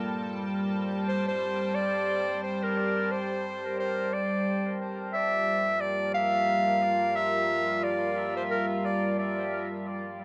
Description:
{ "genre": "ambient", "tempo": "89 BPM", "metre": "4/4", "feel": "swing 58% on 16ths", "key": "G dorian", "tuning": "A4 = 439 Hz", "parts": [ { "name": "deep dark ambient pad", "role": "sustained chords", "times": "0.0-10.2 s", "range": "G3 to A5", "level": "-33 LUFS", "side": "equal", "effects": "chorus, built-in reverb" }, { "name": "warm clarinet", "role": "melody", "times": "1.1-9.7 s", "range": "Bb4 to F5", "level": "-30 LUFS", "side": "equal", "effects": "dub echo" } ], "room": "wet spring reverb, RT60 1.4 s", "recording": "echo-heavy mix", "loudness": "-28 LUFS", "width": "mono", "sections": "0.0-10.2 A section", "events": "none", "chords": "0.0 Am7; 4.5 Gm7", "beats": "0.41 1.09 | 1.76 2.44 3.11 3.78 | 4.46 5.13 5.81 6.48 | 7.16 7.83 8.50 9.18 | 9.85" }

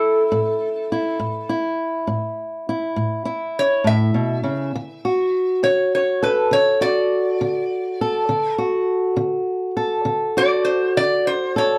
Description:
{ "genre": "acoustic country blues, solo or duo", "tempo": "68 BPM (dotted quarters)", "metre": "12/8", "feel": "straight", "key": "unclear", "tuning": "A4 = 439 Hz", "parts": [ { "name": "metal-body resonator slide guitar", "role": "melody", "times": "0.0-11.8 s", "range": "A4 to E5", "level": "-22 LUFS", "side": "equal", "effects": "none" }, { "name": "fingerpicked old ladder-braced acoustic guitar", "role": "accompaniment", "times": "0.0-11.8 s", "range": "A2 to A4", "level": "-23 LUFS", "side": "equal", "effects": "none" } ], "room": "wet small room reverb, RT60 0.5 s", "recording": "none", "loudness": "-21 LUFS", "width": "mono", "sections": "0.0-11.8 A section", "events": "resonator guitar played with a steel bar solo 0.0-11.8", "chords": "0.0 A5; 4.7 D", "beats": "0.32 | 1.20 2.09 2.97 3.86 | 4.75 5.63 6.52 7.41 | 8.29 9.18 10.07 10.95" }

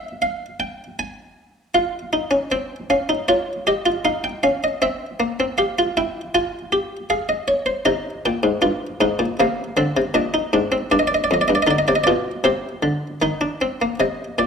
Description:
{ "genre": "classical, baroque-style 3-part fugue for harpsichord", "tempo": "78 BPM", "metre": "4/4", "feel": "straight", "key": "F minor", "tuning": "A4 = 440 Hz", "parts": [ { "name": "buff-stop harpsichord", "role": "solo", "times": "0.0-14.5 s", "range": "F2 to Ab5", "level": "-18 LUFS", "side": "equal", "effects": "none" } ], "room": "wet recital hall reverb, RT60 1.6 s", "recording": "close, detailed microphones", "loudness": "-18 LUFS", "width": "side -6 dB against mid", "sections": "0.0-1.7 A section; 1.7-14.0 B section", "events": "none", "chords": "0.0 N.C.; 1.7 F5; 3.3 Dbadd9; 4.8 C7; 6.3 Fm; 7.9 Cm; 9.4 Fm/C; 10.9 G7; 12.5 Cm", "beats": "0.21 0.97 | 1.74 2.52 3.29 4.05 | 4.82 5.59 6.35 7.11 | 7.87 8.63 9.39 10.16 | 10.92 11.69 12.45 13.22 | 13.99" }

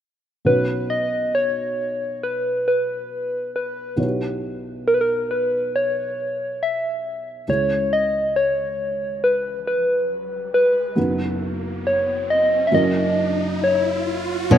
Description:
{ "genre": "pop", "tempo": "68 BPM", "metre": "4/4", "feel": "straight", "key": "B major", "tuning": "A4 = 439 Hz", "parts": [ { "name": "felt-muted upright piano", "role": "accompaniment", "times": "0.4-14.6 s", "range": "F#1 to C#5", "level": "-25 LUFS", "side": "right 1 dB", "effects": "none" }, { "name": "soft struck synth lead", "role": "melody", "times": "0.5-14.6 s", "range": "A#4 to E5", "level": "-20 LUFS", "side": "equal", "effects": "chorus" }, { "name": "riser", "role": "sound effects", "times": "9.8-14.5 s", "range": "none", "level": "-29 LUFS", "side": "right 1 dB", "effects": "none" }, { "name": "picked steel-string acoustic guitar", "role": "arpeggios", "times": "14.5-14.6 s", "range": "B2", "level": "-11 LUFS", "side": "left 2 dB", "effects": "none" } ], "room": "light reverb", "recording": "rough home demo mix", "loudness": "-19 LUFS", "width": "side -10 dB against mid", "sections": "0.5-14.5 A section", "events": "riser 9.8-14.5", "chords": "0.5 Bsus2; 4.0 Em6/B; 7.5 C#m; 11.0 B/F#; 12.7 F#7", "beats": "| 0.46 1.34 2.22 3.10 | 3.98 4.85 5.74 6.62 | 7.49 8.35 9.22 10.10 | 10.97 11.84 12.72 13.61 | 14.51" }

